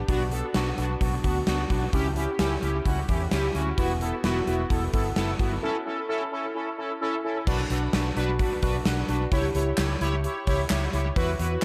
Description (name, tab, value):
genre	synth-pop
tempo	130 BPM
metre	4/4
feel	straight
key	B minor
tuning	A4 = 442 Hz
part	analog synth brass	accompaniment	0.1-11.6 s	B3 to C#5	-30 LUFS	equal	chorus, dub echo
part	vintage muted fingered electric bass	bass	0.1-11.6 s	E1 to E2	-31 LUFS	equal	none
part	gated 80s drum kit	drums	0.1-11.6 s	crash cymbal, handclaps, hi-hat, kick drum, snare drum	-30 LUFS	equal	dub echo
room	moderate spring reverb, RT60 1.1 s, small room ambience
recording	echo-heavy mix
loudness	-26 LUFS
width	mono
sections	0.0-7.5 A section; 7.5-11.6 B section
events	break 5.6-7.5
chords	0.1 Bm; 1.9 C#dim; 3.8 Esus2; 5.6 A; 7.5 Bm; 9.3 C#dim